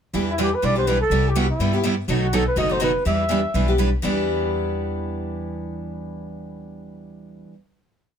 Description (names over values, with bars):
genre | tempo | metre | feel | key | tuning
acoustic string swing (jazz manouche) | 247 BPM | 4/4 | swing 56% on 8ths | E minor | A4 = 440 Hz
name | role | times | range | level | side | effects
picked steel-string acoustic guitar | accompaniment | 0.1-7.5 s | B2 to G4 | -26 LUFS | left 4 dB | none
picked steel-string acoustic guitar | accompaniment | 0.1-7.5 s | B2 to B4 | -26 LUFS | right 7 dB | none
upright bass | bass | 0.1-7.4 s | F#1 to G2 | -25 LUFS | left 1 dB | none
warm flugelhorn | melody | 0.3-3.7 s | E4 to E5 | -23 LUFS | equal | none
room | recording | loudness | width
light reverb | close, detailed microphones | -19 LUFS | side -8 dB against mid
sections
0.1-4.0 A section; 4.0-6.0 final chord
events
none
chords
0.1 Em7; 1.1 Cmaj7; 2.1 B7; 3.0 Em7